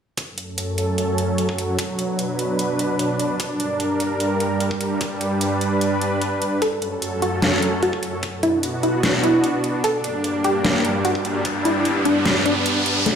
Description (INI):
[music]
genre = heavy wobble dubstep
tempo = 149 BPM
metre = 4/4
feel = half-time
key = unclear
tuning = A4 = 440 Hz
[part]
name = supersaw pad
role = sustained chords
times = 0.5-13.2 s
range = F#2 to B4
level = -21 LUFS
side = right 1 dB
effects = sidechain pumping, low-pass filter
[part]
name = dubstep drum kit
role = drums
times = 0.2-13.1 s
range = hi-hat, snare drum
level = -24 LUFS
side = equal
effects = none
[part]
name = electronic kick drum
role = drums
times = 0.2-11.5 s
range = none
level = -30 LUFS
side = left 1 dB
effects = overdrive, high-pass filter on kick, high-pass filter on room
[part]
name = wide unison pluck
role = melody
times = 6.6-13.2 s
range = A3 to A4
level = -22 LUFS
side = equal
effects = digital delay
[part]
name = riser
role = sound effects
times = 10.8-13.2 s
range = none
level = -24 LUFS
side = equal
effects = none
[part]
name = ethereal airy pad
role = texture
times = 13.1-13.2 s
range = none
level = barely audible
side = none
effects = none
[sound]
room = wet plate reverb, RT60 1.0 s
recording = played on a big sound system in a bare room, stone room reverb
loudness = -19 LUFS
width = side -7 dB against mid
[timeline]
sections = 0.2-13.1 A section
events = filter sweep on supersaw synth 0.2-13.1; riser 10.8-13.1; kick drops out 12.7-13.1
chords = 0.2 F#m; 1.8 Bm; 3.4 Gm; 5.0 G; 6.6 F#m; 8.2 Bm; 9.8 Gm; 11.5 G